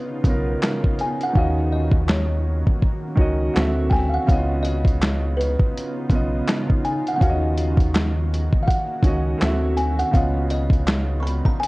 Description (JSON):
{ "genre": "lo-fi hip hop", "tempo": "82 BPM", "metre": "4/4", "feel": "swing 61% on 16ths", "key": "unclear", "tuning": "A4 = 440 Hz", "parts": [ { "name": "buzzing kalimba", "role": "melody", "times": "0.0-11.7 s", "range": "Cb5 to Db6", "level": "-27 LUFS", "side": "left 1 dB", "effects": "low-pass filter" }, { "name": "felt-muted upright piano", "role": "accompaniment", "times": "0.0-11.7 s", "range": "Db3 to E5", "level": "-26 LUFS", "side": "right 2 dB", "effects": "cassette tape, low-pass filter" }, { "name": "granular cloud pad", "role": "sustained chords", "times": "0.0-11.7 s", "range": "Db3 to Gb4", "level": "-31 LUFS", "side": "left 1 dB", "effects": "built-in reverb, low-pass filter" }, { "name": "soft dub sub bass", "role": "bass", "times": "0.2-11.4 s", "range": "Cb2 to Eb2", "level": "-23 LUFS", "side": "equal", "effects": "none" }, { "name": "dusty soul sampler-style drum kit", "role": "drums", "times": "0.2-11.7 s", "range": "handclaps, hi-hat, kick drum, snare drum", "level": "-20 LUFS", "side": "equal", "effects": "none" } ], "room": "light reverb", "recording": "worn, warbling old tape, cassette tape, warbly pitch drift", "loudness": "-18 LUFS", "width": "side -22 dB against mid", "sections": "0.0-11.7 A section", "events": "hi-hats muted 1.4-4.3", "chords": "0.0 Db9; 1.4 Ebm7; 3.6 D9; 4.3 Db9; 7.2 Ebm7; 9.4 D9; 10.1 Db9", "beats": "0.62 | 1.36 2.09 2.82 3.55 | 4.28 5.01 5.75 6.48 | 7.21 7.94 8.67 9.40 | 10.14 10.87 11.60" }